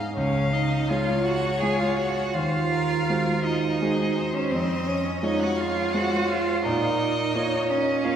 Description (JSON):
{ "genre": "classical, slow romantic movement for piano quartet", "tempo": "84 BPM", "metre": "3/4", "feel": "rubato", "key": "Db major", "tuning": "A4 = 440 Hz", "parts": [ { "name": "rich violin", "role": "second line", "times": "0.0-8.2 s", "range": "C5 to Ab5", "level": "-30 LUFS", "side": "left 2 dB", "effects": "none" }, { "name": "clear grand piano", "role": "accompaniment", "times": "0.0-8.2 s", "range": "Db2 to Db5", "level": "-26 LUFS", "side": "equal", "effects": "none" }, { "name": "clear violin", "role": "melody", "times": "0.2-8.2 s", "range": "Ab4 to F5", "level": "-31 LUFS", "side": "left 3 dB", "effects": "none" }, { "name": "rich cello", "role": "second line", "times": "0.2-8.2 s", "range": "C4 to Ab4", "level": "-26 LUFS", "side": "right 5 dB", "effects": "none" } ], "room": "wet concert hall reverb, RT60 2.3 s", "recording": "recorded in a church or concert hall", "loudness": "-22 LUFS", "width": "side -8 dB against mid", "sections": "0.2-8.2 A section", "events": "none", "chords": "0.2 Db; 2.3 Ab7/Eb; 4.5 Db/F; 6.6 Bbm", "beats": "| 0.17 0.90 1.62 | 2.35 3.09 3.81 | 4.51 5.22 5.94 | 6.64 7.34 8.03" }